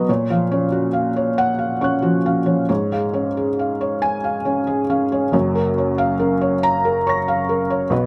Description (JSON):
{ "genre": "neoclassical minimalist piano", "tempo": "46 BPM (dotted quarters)", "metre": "6/8", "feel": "rubato", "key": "F# major", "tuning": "A4 = 440 Hz", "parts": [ { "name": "felt-muted upright piano", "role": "solo", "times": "0.0-8.1 s", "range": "F#1 to A#6", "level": "-19 LUFS", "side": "equal", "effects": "none" } ], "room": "light reverb", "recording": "close, detailed microphones", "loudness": "-19 LUFS", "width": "mono", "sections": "0.0-5.3 A section; 5.3-8.1 B section", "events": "none", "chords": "0.1 F#maj7/A#; 2.7 C#/G#; 5.3 F#maj7", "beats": "| 0.08 1.38 | 2.69 4.01 | 5.33 6.62 | 7.91" }